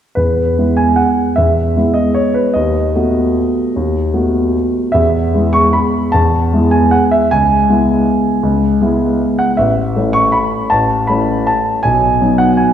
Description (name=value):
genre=classical, piano waltz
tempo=145-169 BPM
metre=3/4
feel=rubato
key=E major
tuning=A4 = 440 Hz
part: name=warm grand piano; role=solo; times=0.2-12.7 s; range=A1 to C#6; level=-11 LUFS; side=equal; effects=none
room=wet concert hall reverb, RT60 1.8 s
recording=recorded in a church or concert hall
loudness=-11 LUFS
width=side -9 dB against mid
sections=0.2-12.7 A section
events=none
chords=0.2 E; 2.6 B7/D#; 4.9 E; 7.3 C#m7; 9.6 A; 11.8 B